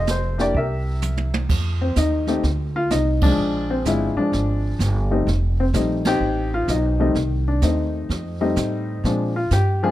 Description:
jazz piano trio; 127 BPM; 4/4; swing 66% on 8ths; F major; A4 = 436 Hz
warm baby grand piano; melody; 0.0-9.9 s; Eb3 to E5; -22 LUFS; left 2 dB
upright bass; bass; 0.0-9.9 s; F1 to Bb2; -22 LUFS; right 1 dB
jazz brush drum kit; drums; 0.1-9.9 s; brushed snare drum, crash cymbal, hi-hat, kick drum, ride cymbal, snare drum, toms; -26 LUFS; right 2 dB
little or no reverb; close, detailed microphones; -18 LUFS; side -14 dB against mid
0.0-1.5 A section; 1.5-9.9 A section
drum fill 1.0-1.5; band accent 3.1, 6.0
0.0 F; 0.6 C7; 1.5 F7(no3); 3.4 Bb7; 5.3 F7; 9.0 Bb7
0.08 0.55 1.02 | 1.50 1.97 2.44 2.91 | 3.38 3.85 4.33 4.80 | 5.27 5.74 6.21 6.69 | 7.16 7.63 8.10 8.57 | 9.04 9.52

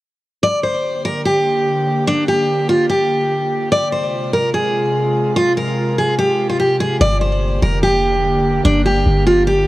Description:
hip hop, trap; 146 BPM; 4/4; half-time; G phrygian; A4 = 441 Hz
picked steel-string acoustic guitar; melody; 0.4-9.7 s; D4 to D5; -15 LUFS; equal
airy breathy pad; sustained chords; 0.8-9.7 s; C3 to G4; -22 LUFS; equal; chorus
warm 808-style bass; bass; 7.0-9.7 s; F1 to G1; -17 LUFS; equal
light reverb, small room ambience; worn, warbling old tape, cassette tape, warbly pitch drift; -14 LUFS; side -17 dB against mid
0.4-7.0 A section; 7.0-9.7 B section
0.4 Gm; 3.7 Fm; 7.0 Gm
| 0.43 0.84 1.25 1.66 | 2.07 2.48 2.90 3.31 | 3.72 4.13 4.54 4.95 | 5.36 5.77 6.18 6.59 | 7.01 7.42 7.83 8.24 | 8.65 9.06 9.47

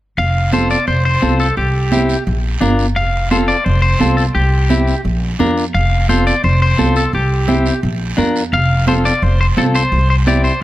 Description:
latin, cumbia; 172 BPM; 4/4; straight; F major; A4 = 440 Hz
electric guitar at the edge of break-up; melody; 0.2-10.6 s; G4 to F5; -18 LUFS; left 2 dB; spring reverb, slapback echo
upright bass; bass; 0.2-10.5 s; F1 to F2; -15 LUFS; equal
congas; percussion; 0.2-10.4 s; -20 LUFS; right 5 dB
guiro; percussion; 0.2-10.6 s; -29 LUFS; right 6 dB
clean electric guitar; accompaniment; 0.5-10.5 s; C4 to Bb4; -20 LUFS; left 2 dB
little or no reverb; close, detailed microphones; -12 LUFS; side -15 dB against mid
0.2-10.6 A section
0.2 F; 1.6 C; 2.3 Bb6; 3.0 F; 4.4 C; 5.0 Bb; 5.7 F; 7.1 C; 7.8 Bb; 8.5 F; 9.9 C
| 0.18 0.53 0.88 1.22 | 1.57 1.92 2.27 2.61 | 2.96 3.31 3.66 4.00 | 4.35 4.70 5.05 5.40 | 5.75 6.09 6.44 6.79 | 7.14 7.48 7.83 8.18 | 8.53 8.88 9.22 9.57 | 9.92 10.27

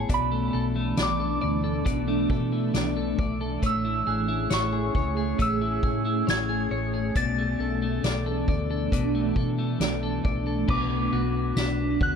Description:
dream pop; 68 BPM; 4/4; straight; A4 = 440 Hz
soft synth bell; melody; 0.0-12.2 s; A5 to A6; -30 LUFS; right 2 dB; chorus, phaser, tape echo
ethereal airy pad; sustained chords; 0.0-12.2 s; E3 to G#4; -29 LUFS; right 3 dB; ensemble chorus, built-in reverb, phaser
clean electric guitar; arpeggios; 0.0-12.2 s; B2 to D5; -30 LUFS; left 5 dB; lush chorus, tape echo
hollow-body short-scale fingered electric bass; bass; 0.0-12.2 s; A1 to B2; -30 LUFS; equal
soft-mallet drum kit; drums; 0.1-12.2 s; crash cymbal, hi-hat, kick drum, ride cymbal, snare drum, tambourine; -28 LUFS; equal
glockenspiel with soft plastic mallets; texture; 4.1-6.3, 11.6-12.2 s; F#6 to B6; -42 LUFS; right 4 dB; stereo widening, tape echo
light reverb; dark, warm production; -23 LUFS; side -6 dB against mid
0.0-10.7 A section; 10.7-12.2 B section
0.1 E7sus4/B; 3.6 Amaj7; 7.2 E7sus4/B; 10.7 Bm7
| 0.09 0.98 1.86 2.74 | 3.62 4.51 5.39 6.27 | 7.15 8.04 8.92 9.80 | 10.68 11.56

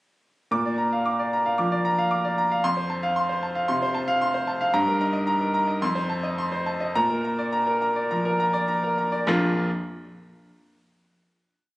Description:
classical, virtuoso piano study; 102-116 BPM; 4/4; rubato; Bb major; A4 = 440 Hz
bright baby grand piano; solo; 0.5-9.7 s; Bb1 to D6; -22 LUFS; equal
moderate recital hall reverb, RT60 1.7 s; recorded on a phone in the room, club reverb; -22 LUFS; side -19 dB against mid
0.5-9.3 A section; 9.3-11.5 final chord
slowing down 3.7-9.3
0.5 Bb; 2.7 F; 4.7 Eb/G; 5.8 F7; 6.9 Bb
| 0.52 1.06 1.59 2.12 | 2.66 3.18 3.71 4.23 | 4.75 5.28 5.81 6.36 | 6.94 7.51 8.10 8.68 | 9.26

